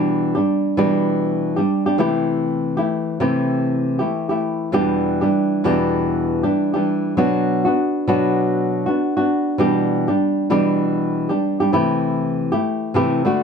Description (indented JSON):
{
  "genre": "pop",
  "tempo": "99 BPM",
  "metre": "4/4",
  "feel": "swing 60% on 16ths",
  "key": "E minor",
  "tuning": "A4 = 439 Hz",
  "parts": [
    { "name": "flamenco guitar", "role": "solo", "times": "0.0-13.4 s", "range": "E2 to G4", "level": "-17 LUFS", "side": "equal", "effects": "none" }
  ],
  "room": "moderate small room reverb, RT60 0.5 s",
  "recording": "none",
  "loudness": "-17 LUFS",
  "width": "side -6 dB against mid",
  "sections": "0.0-13.4 A section",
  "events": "none",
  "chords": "0.0 Em7/B; 2.0 C6; 4.7 Em7; 7.2 Bm; 9.6 Em7/B; 11.7 C6"
}